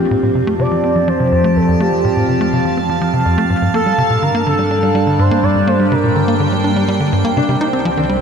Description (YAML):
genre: ambient, sequencer-driven space music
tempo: 124 BPM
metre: 4/4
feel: straight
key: G minor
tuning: A4 = 440 Hz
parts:
  - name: expressive portamento lead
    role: melody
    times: 0.0-6.4 s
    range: G4 to D5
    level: -19 LUFS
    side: equal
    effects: analog chorus, tape echo
  - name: evolving wavetable pad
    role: sustained chords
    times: 0.0-8.2 s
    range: C3 to A5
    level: -17 LUFS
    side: right 2 dB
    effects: phaser, built-in reverb
  - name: tight sequencer bass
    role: riff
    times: 0.0-8.2 s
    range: F2 to Eb4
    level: -17 LUFS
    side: equal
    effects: tape echo
  - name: analog drone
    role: bass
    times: 0.4-8.2 s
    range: C2 to G2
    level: -22 LUFS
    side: equal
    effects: chorus
  - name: concert harp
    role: arpeggios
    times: 7.4-8.2 s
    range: G3 to C5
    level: -19 LUFS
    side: left 2 dB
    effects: auto-pan, tape echo
room: wet huge ambient reverb, RT60 7.1 s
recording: cassette tape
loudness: -12 LUFS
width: side -6 dB against mid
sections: 0.0-8.2 A section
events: none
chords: 0.0 Fadd9; 3.5 Gmadd9; 7.4 Cmadd9